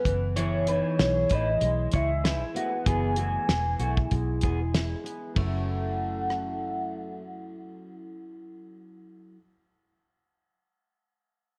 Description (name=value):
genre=indie pop, bedroom pop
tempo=96 BPM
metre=4/4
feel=swing 55% on 16ths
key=F# dorian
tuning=A4 = 440 Hz
part: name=warbly nostalgic lead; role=melody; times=0.0-8.6 s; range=B4 to G#5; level=-32 LUFS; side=equal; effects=lush chorus, low-pass filter, tape echo
part: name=picked steel-string acoustic guitar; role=accompaniment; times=0.0-9.4 s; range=E3 to A4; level=-37 LUFS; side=equal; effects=lush chorus, vibrato effect, low-pass filter
part: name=vintage muted fingered electric bass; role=bass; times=0.1-9.3 s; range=E1 to C#2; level=-32 LUFS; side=equal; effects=none
part: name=damped 70s drum kit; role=drums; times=0.1-6.5 s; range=hi-hat, kick drum, ride cymbal, rim click, snare drum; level=-30 LUFS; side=equal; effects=none
part: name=electric guitar through a small old amp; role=second line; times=0.4-7.2 s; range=A3 to C#5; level=-39 LUFS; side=equal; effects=lush chorus, tape echo
room=light reverb, small room ambience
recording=worn, warbling old tape, cassette tape, warbly pitch drift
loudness=-27 LUFS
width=mono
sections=0.0-5.4 A section; 5.4-7.9 B section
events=filter sweep 0.0-5.4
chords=0.0 Amaj9 (rootless); 5.4 F#m7